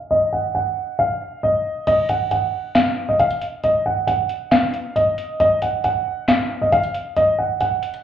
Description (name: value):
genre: hip hop, trap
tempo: 136 BPM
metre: 4/4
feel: half-time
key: unclear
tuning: A4 = 440 Hz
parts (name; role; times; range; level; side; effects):
- dark concert grand piano; melody; 0.1-8.0 s; Eb5 to Gb5; -18 LUFS; equal; low-pass filter, tape echo
- booming analog drum machine; drums; 1.9-8.0 s; crash cymbal, handclaps, hi-hat, snare drum; -23 LUFS; equal; none
room: light reverb, digital ambience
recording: heard muffled through a wall, club reverb, EQ, low-pass filter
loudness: -17 LUFS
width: side -10 dB against mid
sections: 0.0-1.9 A section; 1.9-8.0 B section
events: filter sweep 0.0-1.9; kick muted 1.9-8.0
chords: none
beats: | 0.11 0.55 0.99 1.43 | 1.87 2.31 2.75 3.19 | 3.64 4.08 4.52 4.96 | 5.40 5.84 6.28 6.72 | 7.17 7.61